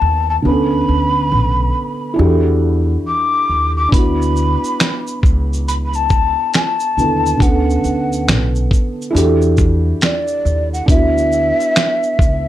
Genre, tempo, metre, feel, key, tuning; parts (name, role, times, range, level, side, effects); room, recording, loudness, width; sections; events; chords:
lo-fi hip hop; 69 BPM; 4/4; swing 62% on 16ths; D major; A4 = 440 Hz
breathy mellow jazz flute; melody; 0.0-12.5 s; D5 to D6; -18 LUFS; left 1 dB; low-pass filter, analog delay
felt-muted upright piano; accompaniment; 0.0-12.5 s; D3 to A4; -19 LUFS; right 1 dB; cassette tape, low-pass filter
upright bass; bass; 0.0-12.5 s; B1 to E2; -17 LUFS; equal
dusty soul sampler-style drum kit; drums; 3.9-12.5 s; finger snaps, hi-hat, kick drum, shaker, snare drum; -16 LUFS; equal
light reverb; -13 LUFS; side -13 dB against mid
0.0-12.5 A section
0.4 Bm7/D; 2.2 Em11; 3.9 D69; 7.4 Bm7/D; 9.1 Em11; 10.9 D69